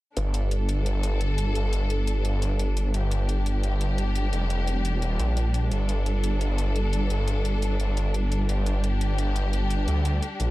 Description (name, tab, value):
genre	dark technical drum and bass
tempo	173 BPM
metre	4/4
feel	straight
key	unclear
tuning	A4 = 438 Hz
part	clear studio string section	sustained chords	0.2-10.5 s	G3 to A4	-31 LUFS	left 1 dB	none
part	snarling distorted saw bass	bass	0.2-10.5 s	F1 to D2	-24 LUFS	equal	distortion
part	electronic hi-hat	drums	0.2-10.5 s	none	-37 LUFS	left 1 dB	overdrive, small room reverb
room	small room ambience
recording	dark, warm production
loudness	-23 LUFS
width	side -17 dB against mid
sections	0.2-10.5 A section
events	none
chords	0.2 G5